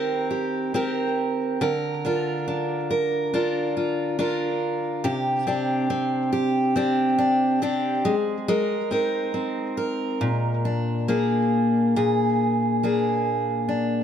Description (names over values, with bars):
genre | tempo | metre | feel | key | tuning
pop | 70 BPM | 4/4 | straight | unclear | A4 = 440 Hz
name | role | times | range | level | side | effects
picked steel-string acoustic guitar | solo | 0.0-14.0 s | Bb2 to Bb4 | -21 LUFS | equal | none
room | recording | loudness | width
moderate lush hall reverb, RT60 2.3 s | none | -21 LUFS | side -8 dB against mid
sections
0.0-12.0 A section; 12.0-14.0 B section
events
none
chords
0.0 Eb6; 1.6 Bb/D; 5.0 Csus2; 8.0 Abadd9; 10.2 Bb7